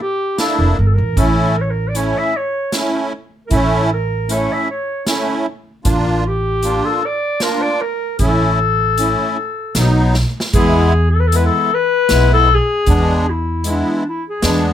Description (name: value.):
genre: klezmer.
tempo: 77 BPM.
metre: 3/4.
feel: straight.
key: A phrygian dominant, E major from 10.5 s.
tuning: A4 = 440 Hz.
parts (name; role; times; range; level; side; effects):
warm clarinet; melody; 0.0-14.7 s; D4 to E5; -18 LUFS; left 3 dB; none.
musette accordion; accompaniment; 0.4-14.7 s; F#3 to F4; -18 LUFS; right 1 dB; none.
street-band drum kit; drums; 0.4-14.6 s; hi-hat, kick drum, snare drum; -20 LUFS; right 1 dB; none.
upright bass; bass; 0.6-14.7 s; F1 to E2; -16 LUFS; equal; none.
room: light reverb.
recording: close, detailed microphones.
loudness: -14 LUFS.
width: side -10 dB against mid.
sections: 0.0-10.5 A section; 10.5-14.7 B section.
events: drum fill 10.1-10.5.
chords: 0.0 Bb; 1.2 A; 5.9 Bb/A; 8.2 A; 9.8 B7; 10.5 E.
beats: 0.39 | 1.17 1.95 2.73 | 3.51 4.29 5.07 | 5.85 6.63 7.41 | 8.19 8.97 9.75 | 10.53 11.31 12.09 | 12.87 13.64 14.42.